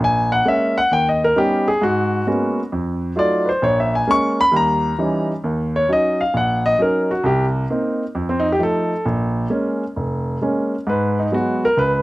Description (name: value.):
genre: solo jazz.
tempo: 132 BPM.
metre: 4/4.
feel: swing 68% on 8ths.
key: Eb minor from 5.4 s.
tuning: A4 = 441 Hz.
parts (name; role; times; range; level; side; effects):
warm grand piano; solo; 0.0-12.0 s; F1 to C#6; -16 LUFS; equal; none.
room: little or no reverb.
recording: recorded outdoors, with no room sound.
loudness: -16 LUFS.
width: side -18 dB against mid.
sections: 0.0-5.4 A section; 5.4-12.0 A section.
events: grand piano solo 0.0-5.4, 5.4-12.0.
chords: 0.0 A#m7b5; 0.9 D#7b13; 1.8 G#m11; 2.7 F7b9; 3.6 A#m7b5; 4.5 D#7b9; 5.4 Ebm7; 7.2 Cm7; 8.1 F7; 9.1 Bbm7; 10.9 Abm7.